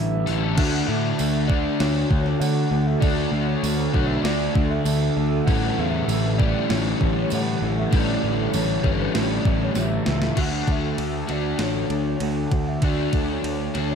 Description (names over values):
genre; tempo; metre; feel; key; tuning
rock, shoegaze and dream pop; 98 BPM; 4/4; straight; D major; A4 = 440 Hz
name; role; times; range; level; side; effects
mellow horn-like synth lead; melody; 0.0-13.9 s; B4 to F#5; -31 LUFS; equal; chorus, diffuse ambient delay
fingerpicked twelve-string acoustic guitar; arpeggios; 0.0-13.9 s; E3 to G4; -33 LUFS; right 11 dB; analog chorus, diffuse ambient delay
direct-recorded clean electric guitar; riff; 0.0-13.9 s; A2 to F#4; -30 LUFS; right 11 dB; reverse reverb
overdriven semi-hollow guitar; riff; 0.0-13.9 s; A2 to A4; -26 LUFS; left 9 dB; analog chorus
fuzz picked electric bass; bass; 0.0-13.9 s; G1 to D3; -25 LUFS; equal; overdrive
crisp 8-bit digital drum machine; drums; 0.3-13.9 s; crash cymbal, hi-hat, kick drum, ride cymbal, snare drum; -26 LUFS; equal; overdrive
raw garage guitar; riff; 0.6-10.4 s; A2 to D4; -29 LUFS; equal; overdrive, phaser
tambourine; percussion; 1.2-9.9 s; none; -38 LUFS; right 16 dB; none
room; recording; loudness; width
light reverb; none; -20 LUFS; side -7 dB against mid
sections
0.6-10.4 A section; 10.4-13.9 B section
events
drum fill 9.8-10.4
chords
0.0 A7sus4; 0.6 Dmaj7; 5.5 A7sus4; 10.4 Dmaj7